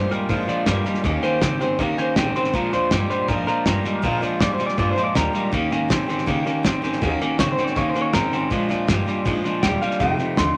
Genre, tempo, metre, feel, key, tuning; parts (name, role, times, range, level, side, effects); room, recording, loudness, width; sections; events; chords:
rockabilly; 161 BPM; 4/4; straight; Bb mixolydian; A4 = 438 Hz
electric guitar through a small old amp; melody; 0.0-10.6 s; G4 to C6; -27 LUFS; equal
picked steel-string acoustic guitar; accompaniment; 0.0-10.6 s; F2 to G4; -31 LUFS; equal
electric guitar at the edge of break-up; riff; 0.0-10.5 s; F2 to C4; -26 LUFS; equal
upright bass; bass; 0.0-10.5 s; E1 to Db3; -30 LUFS; equal
cloth-damped thuddy drum kit; drums; 0.1-10.5 s; hi-hat, kick drum, snare drum; -27 LUFS; equal
light reverb; -21 LUFS; mono
0.0-10.6 A section
0.0 Bb7; 1.0 Eb7; 2.5 Bb7; 5.5 Eb7; 7.0 Ebm7; 8.5 Bb7; 10.0 F7